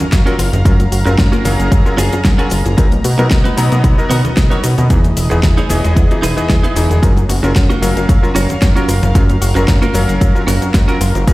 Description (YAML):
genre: nu-disco, nu disco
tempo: 113 BPM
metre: 4/4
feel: swing 54% on 16ths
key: F# major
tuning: A4 = 444 Hz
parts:
  - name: lush unison pad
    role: sustained chords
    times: 0.0-11.3 s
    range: E3 to A#5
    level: -24 LUFS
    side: equal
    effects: chorus, sidechain pumping
  - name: wide unison pluck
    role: arpeggios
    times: 0.0-11.3 s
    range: D#3 to F#4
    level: -25 LUFS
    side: left 2 dB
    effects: none
  - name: direct-recorded clean electric guitar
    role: riff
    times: 0.0-11.2 s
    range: B3 to C#5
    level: -22 LUFS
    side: right 3 dB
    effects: lush chorus, analog delay
  - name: fat analog bass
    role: bass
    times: 0.0-11.3 s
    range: E1 to B2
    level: -15 LUFS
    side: equal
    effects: none
  - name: pop drum kit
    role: drums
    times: 0.0-11.3 s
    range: hi-hat, rim click, shaker, snare drum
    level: -22 LUFS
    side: equal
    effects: studio reverb
  - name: maracas, congas and bongos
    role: percussion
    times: 0.0-11.3 s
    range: none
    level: -25 LUFS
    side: left 3 dB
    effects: none
  - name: electronic kick drum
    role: drums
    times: 0.1-11.3 s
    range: none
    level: -13 LUFS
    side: equal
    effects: studio reverb
  - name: clear electric grand piano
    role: accompaniment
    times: 0.3-11.3 s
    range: E3 to A#5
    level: -21 LUFS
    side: left 1 dB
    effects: sidechain pumping, analog delay
room: little or no reverb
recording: played on a big sound system in a bare room, stone room reverb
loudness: -10 LUFS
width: side -19 dB against mid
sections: 0.0-11.3 A section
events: none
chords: 0.0 F#maj7; 2.8 Bmaj7; 4.9 Emaj7; 7.0 F#maj7